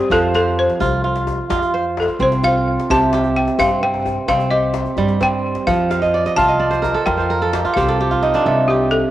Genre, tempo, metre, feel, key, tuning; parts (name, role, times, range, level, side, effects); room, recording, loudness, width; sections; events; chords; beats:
west african traditional, West African string and xylophone music; 86 BPM (dotted quarters); 12/8; straight; A4 = 440 Hz
balafon; melody; 0.0-9.0 s; G4 to A5; -19 LUFS; left 1 dB; analog delay
kora; arpeggios; 0.0-9.1 s; C3 to F5; -17 LUFS; right 3 dB; cassette tape
upright bass; bass; 0.1-9.0 s; C2 to G2; -24 LUFS; left 2 dB
djembe; percussion; 0.1-8.4 s; -27 LUFS; left 5 dB
wet spring reverb, RT60 2.6 s; home recording on cassette; -15 LUFS; side -14 dB against mid
0.0-8.4 A section
balafon solo 0.0-8.4; kora fill 5.9-8.4; drum fill 8.1-8.4
0.1 F5; 5.7 F; 8.4 Cm
| 0.11 0.81 1.50 2.20 | 2.89 3.59 4.28 4.97 | 5.67 6.36 7.06 7.75 | 8.45